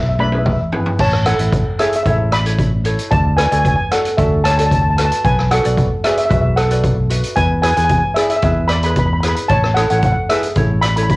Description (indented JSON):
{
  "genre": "calypso",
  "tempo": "113 BPM",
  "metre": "4/4",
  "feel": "straight",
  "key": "A major",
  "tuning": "A4 = 440 Hz",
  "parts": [
    { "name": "steel pan", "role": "melody", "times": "0.0-11.2 s", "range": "G#4 to B5", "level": "-17 LUFS", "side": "equal", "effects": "cassette tape" },
    { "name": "ukulele", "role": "accompaniment", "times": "0.0-11.2 s", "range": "E4 to E5", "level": "-24 LUFS", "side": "equal", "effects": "cassette tape" },
    { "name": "fingered electric bass", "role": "bass", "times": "0.0-11.2 s", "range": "A1 to E2", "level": "-17 LUFS", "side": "equal", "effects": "none" },
    { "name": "street-band drum kit", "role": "drums", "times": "0.2-11.2 s", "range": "crash cymbal, hi-hat, kick drum, rim click, toms", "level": "-18 LUFS", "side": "equal", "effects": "cassette tape" }
  ],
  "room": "light reverb",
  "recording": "home recording on cassette",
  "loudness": "-13 LUFS",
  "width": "side -21 dB against mid",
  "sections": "1.0-11.2 A section",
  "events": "drum fill 0.0-1.0",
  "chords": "0.0 E; 1.0 A; 3.1 D; 5.2 Bm; 7.4 E; 9.5 A"
}